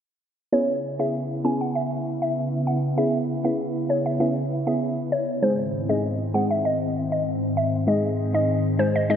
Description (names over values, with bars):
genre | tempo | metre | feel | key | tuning
dancehall | 98 BPM | 4/4 | straight | C# minor | A4 = 440 Hz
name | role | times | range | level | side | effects
mallet-like synth pluck | melody | 0.5-9.2 s | B#4 to G#5 | -26 LUFS | equal | chorus, diffuse ambient delay
glassy wavetable pluck | accompaniment | 0.5-9.2 s | G#3 to G#4 | -26 LUFS | equal | chorus
glassy FM pad | sustained chords | 0.8-9.2 s | G#2 to E4 | -26 LUFS | equal | ensemble chorus, built-in reverb
room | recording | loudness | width
wet lush hall reverb, RT60 2.1 s | dreamy mix soaked in reverb, low-pass filter | -22 LUFS | side -8 dB against mid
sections
0.5-9.2 A section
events
filter sweep 0.5-9.2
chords
0.5 C#m7; 5.4 G#